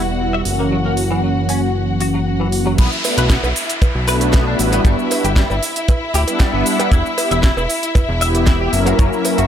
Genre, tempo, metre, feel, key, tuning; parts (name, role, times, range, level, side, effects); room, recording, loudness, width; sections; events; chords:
nu-disco, nu disco; 116 BPM; 4/4; straight; B minor; A4 = 440 Hz
warm analog pad; accompaniment; 0.0-9.4 s; E3 to F#5; -19 LUFS; equal; chorus, sidechain pumping, dub echo
rich studio string section; sustained chords; 0.0-9.5 s; E4 to F#5; -23 LUFS; left 2 dB; sidechain pumping
fat analog bass; bass; 0.0-9.5 s; D1 to B1; -20 LUFS; equal
direct-recorded clean electric guitar; riff; 0.3-9.4 s; E3 to E5; -24 LUFS; left 2 dB; ensemble chorus, dub echo
house drum kit; drums; 0.5-9.5 s; crash cymbal, hi-hat, shaker, snare drum; -24 LUFS; right 1 dB
kick drum; drums; 2.8-9.1 s; -13 LUFS; equal
downlifter; sound effects; 2.8-6.9 s; -27 LUFS; equal
cowbell; percussion; 3.0-9.4 s; -27 LUFS; right 4 dB
light reverb, small room ambience; -14 LUFS; side -9 dB against mid
0.0-2.8 A section; 2.8-9.5 B section
filter sweep on clean electric guitar 0.0-2.8; drop 2.8-9.5
0.5 F#7; 2.8 Bm7; 4.9 Gmaj7; 6.9 Em; 8.7 F#7